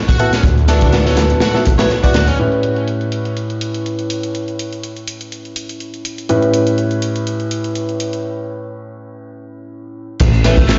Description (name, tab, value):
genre	breakbeat, breaks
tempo	123 BPM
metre	4/4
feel	swing 54% on 16ths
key	A mixolydian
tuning	A4 = 440 Hz
part	biting overdriven guitar	riff	0.1-2.4, 10.4-10.8 s	A3 to C#5	-26 LUFS	equal	dub echo
part	crunchy breakbeat drum kit	drums	0.1-2.3, 10.2-10.8 s	crash cymbal, hi-hat, kick drum, snare drum	-16 LUFS	equal	none
part	warm grand piano	stabs	0.2-10.5 s	A2 to D5	-21 LUFS	equal	dub echo
part	punchy analog drum machine	drums	0.2-10.8 s	handclaps, hi-hat	-31 LUFS	equal	low-pass filter on hats, low-pass filter on snare
part	detuned saw bass	bass	0.4-2.3, 10.2-10.8 s	A1 to D2	-17 LUFS	equal	none
room	moderate small room reverb, RT60 0.5 s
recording	played on a big sound system in a bare room, stone room reverb, nothing above 7.5 kHz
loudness	-16 LUFS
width	mono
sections	0.0-2.4 A section; 2.4-10.2 B section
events	break 8.2-10.2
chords	0.0 D69; 2.4 A9; 10.2 N.C.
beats	| 0.44 0.93 1.42 1.90 | 2.39 2.88 3.37 3.86 | 4.34 4.83 5.32 5.81 | 6.29 6.78 7.27 7.76 | 8.25 8.73 9.22 9.71 | 10.20 10.69